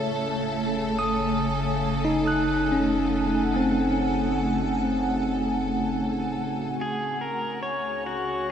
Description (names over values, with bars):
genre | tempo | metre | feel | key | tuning
ambient | 71 BPM | 4/4 | straight | unclear | A4 = 441 Hz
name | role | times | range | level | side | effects
granular cloud pad | sustained chords | 0.0-8.5 s | A3 to Ab5 | -29 LUFS | equal | built-in reverb
bell-like tine electric piano | arpeggios | 0.0-6.8 s | A3 to Gb6 | -25 LUFS | equal | fast stereo tremolo, analog delay
round analog bass | bass | 0.0-8.5 s | Gb1 to Db2 | -35 LUFS | equal | none
bowed-like drone | drone | 0.0-8.5 s | C#3 | -34 LUFS | equal | built-in reverb, phaser
clear studio violin section | texture | 0.0-8.5 s | A4 to Db6 | -33 LUFS | equal | none
pedal steel guitar | melody | 6.8-8.5 s | Gb4 to Db5 | -28 LUFS | left 1 dB | analog delay
room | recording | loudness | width
wet huge ambient reverb, RT60 7.3 s | dreamy mix soaked in reverb | -23 LUFS | side -8 dB against mid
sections
0.0-6.8 A section; 6.8-8.5 B section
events
filter sweep on ambient pad 6.8-8.5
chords
0.0 Gbmadd9; 6.8 Dbsus2